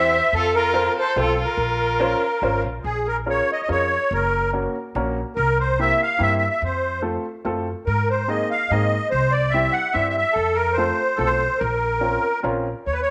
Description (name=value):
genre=musette waltz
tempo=144 BPM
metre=3/4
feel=straight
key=Bb minor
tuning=A4 = 440 Hz
part: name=musette accordion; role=melody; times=0.0-13.1 s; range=Ab4 to Gb5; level=-23 LUFS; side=equal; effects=slapback echo
part: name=rich violin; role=second line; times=0.0-2.6 s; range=F4 to C5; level=-29 LUFS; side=equal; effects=none
part: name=clear upright piano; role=accompaniment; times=0.0-12.7 s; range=G3 to C5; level=-28 LUFS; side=equal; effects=none
part: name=upright bass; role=bass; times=0.0-13.1 s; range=Gb1 to Ab2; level=-28 LUFS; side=equal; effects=none
room=wet spring reverb, RT60 1.6 s, studio reverb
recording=none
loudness=-21 LUFS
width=mono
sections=0.0-2.8 A section; 2.8-12.9 A section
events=none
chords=0.3 F; 1.6 Bbmadd9; 2.8 Bbm7; 4.1 Gb; 5.4 C7; 6.6 F; 7.9 Abadd9; 9.1 C; 10.4 F; 11.6 Bbmadd9